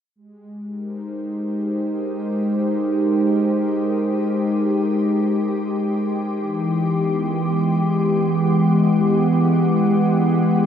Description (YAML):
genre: ambient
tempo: free time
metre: none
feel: none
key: unclear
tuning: A4 = 439 Hz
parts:
  - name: warm analog pad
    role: sustained chords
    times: 0.2-10.7 s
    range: E3 to Gb5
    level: -18 LUFS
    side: equal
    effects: chorus
  - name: organ-like drone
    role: drone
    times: 0.8-10.7 s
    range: Ab3 to G4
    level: -25 LUFS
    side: left 2 dB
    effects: ensemble chorus, built-in reverb
room: wet cathedral reverb, RT60 5.8 s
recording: in a vast, echoing space, cassette tape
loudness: -18 LUFS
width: side -8 dB against mid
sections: 0.2-10.7 A section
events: none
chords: 0.2 Abmaj7; 6.4 Emaj7